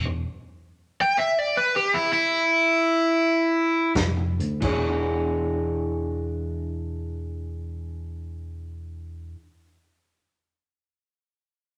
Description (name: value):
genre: electric blues shuffle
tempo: free time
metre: none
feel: none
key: E mixolydian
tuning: A4 = 441 Hz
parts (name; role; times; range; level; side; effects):
- fingered electric bass; bass; 0.0-0.2, 4.0-9.3 s; E1 to D2; -32 LUFS; equal; none
- electric guitar through a small old amp; riff; 0.1, 4.0-9.4 s; E3 to C#5; -31 LUFS; equal; none
- cranked stack guitar; melody; 1.0-3.9 s; E4 to G5; -22 LUFS; equal; overdrive
- vintage drum kit; drums; 4.0-4.8 s; crash cymbal, hi-hat, kick drum, snare drum; -31 LUFS; equal; none
room: wet large studio reverb, RT60 1.4 s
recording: none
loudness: -24 LUFS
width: mono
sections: 0.0-4.6 A section; 4.6-10.0 B section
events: slowing down 0.0-4.6; overdriven electric guitar solo 0.0-4.6; stop 0.0-4.0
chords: 0.0 N.C.; 4.6 E6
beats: free time